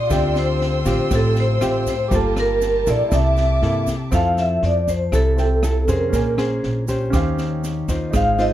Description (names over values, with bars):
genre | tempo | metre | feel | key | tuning
bossa nova | 120 BPM | 4/4 | straight | F major | A4 = 440 Hz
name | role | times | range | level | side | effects
vibraphone with medium mallets | melody | 0.0-8.5 s | A4 to F5 | -21 LUFS | equal | none
nylon-string guitar | accompaniment | 0.0-8.5 s | A2 to C5 | -23 LUFS | left 1 dB | none
warm baby grand piano | accompaniment | 0.0-8.5 s | Db4 to C6 | -30 LUFS | right 4 dB | none
warm studio violin section | sustained chords | 0.0-4.1 s | F4 to E6 | -31 LUFS | right 2 dB | none
upright bass | bass | 0.1-8.5 s | G1 to G2 | -22 LUFS | right 1 dB | none
open jazz drum kit | drums | 0.1-8.5 s | kick drum, rim click, snare drum | -26 LUFS | equal | none
tube shaker | percussion | 0.1-8.5 s | none | -40 LUFS | right 10 dB | none
room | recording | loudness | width
little or no reverb | dark, warm production | -17 LUFS | side -12 dB against mid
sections
0.0-4.1 A section; 4.1-8.5 B section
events
none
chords
0.1 Dm11; 2.1 Gm9; 3.1 C13; 4.1 Fmaj7; 6.1 Bbm9; 7.1 Eb13